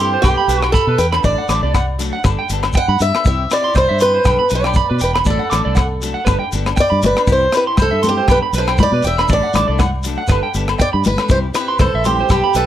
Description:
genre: highlife guitar band.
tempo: 119 BPM.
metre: 4/4.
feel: swing 55% on 16ths.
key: G major.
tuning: A4 = 440 Hz.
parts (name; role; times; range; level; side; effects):
picked swing-style acoustic guitar; melody; 0.0-12.7 s; G4 to F#5; -17 LUFS; equal; plate reverb.
clean electric guitar; accompaniment; 0.0-12.7 s; F#3 to A4; -26 LUFS; left 5 dB; lush chorus, plate reverb.
electric guitar at the edge of break-up; arpeggios; 0.0-12.7 s; B4 to D6; -20 LUFS; right 6 dB; plate reverb.
fingered electric bass; bass; 0.0-12.7 s; E1 to B2; -19 LUFS; equal; none.
tight funk drum kit; drums; 0.2-12.7 s; hi-hat, kick drum, rim click; -18 LUFS; equal; none.
agogo bells; percussion; 0.2-12.4 s; none; -25 LUFS; left 10 dB; none.
shekere; percussion; 0.2-12.7 s; none; -25 LUFS; left 1 dB; none.
congas; percussion; 6.3-12.6 s; none; -23 LUFS; left 3 dB; none.
room: light reverb.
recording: none.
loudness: -13 LUFS.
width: side -11 dB against mid.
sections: 0.0-12.7 A section.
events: none.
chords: 0.2 Gadd9/B; 1.2 D/A; 2.3 Gadd9; 3.3 C; 4.3 Gadd9/B; 5.3 D/A; 6.3 Gadd9; 7.3 C; 8.3 Gadd9/B; 9.3 D/A; 10.3 Gadd9; 11.3 C.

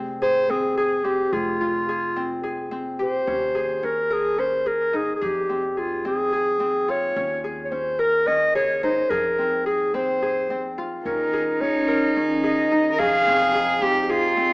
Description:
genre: contemporary instrumental, chamber music in an uneven meter.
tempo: 216 BPM (eighths).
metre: 7/8.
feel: straight.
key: F minor.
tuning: A4 = 438 Hz.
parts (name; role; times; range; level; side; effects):
Celtic harp; arpeggios; 0.0-14.5 s; C4 to Bb4; -27 LUFS; left 1 dB; none.
upright bass; bass; 0.0-14.5 s; F1 to F2; -40 LUFS; equal; none.
warm clarinet; melody; 0.2-14.1 s; F4 to F5; -22 LUFS; equal; none.
rich cello; second line; 11.1-14.5 s; Eb4 to Bb4; -21 LUFS; right 1 dB; none.
warbly tape-like pad; sustained chords; 11.7-14.5 s; Eb3 to Ab4; -29 LUFS; equal; chorus, built-in reverb.
room: moderate recital hall reverb, RT60 1.8 s.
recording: worn, warbling old tape, cassette tape, warbly pitch drift, small speaker sound.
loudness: -20 LUFS.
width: side -26 dB against mid.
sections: 0.0-3.3 A section; 3.3-14.5 B section.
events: none.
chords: 0.0 Fm; 3.3 Eb7sus4; 5.2 Fm; 7.2 Eb7sus4; 9.1 Fm; 11.1 Eb7sus4; 13.0 Fm7.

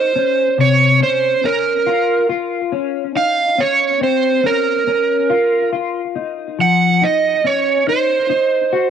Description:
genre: dream pop.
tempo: 70 BPM.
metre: 4/4.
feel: straight.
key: unclear.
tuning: A4 = 441 Hz.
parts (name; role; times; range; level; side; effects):
overdriven slide guitar; melody; 0.0-8.9 s; Bb4 to Gb5; -15 LUFS; right 5 dB; cassette tape, plate reverb, analog delay.
mellow electric guitar; arpeggios; 0.0-8.9 s; C3 to Gb4; -19 LUFS; left 8 dB; analog chorus, plate reverb, analog delay.
room: wet booth ambience, RT60 0.2 s.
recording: home recording on cassette.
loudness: -14 LUFS.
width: side -8 dB against mid.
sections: 0.0-8.9 A section.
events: none.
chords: 0.0 Dbmaj13/C; 6.2 Ab (rootless).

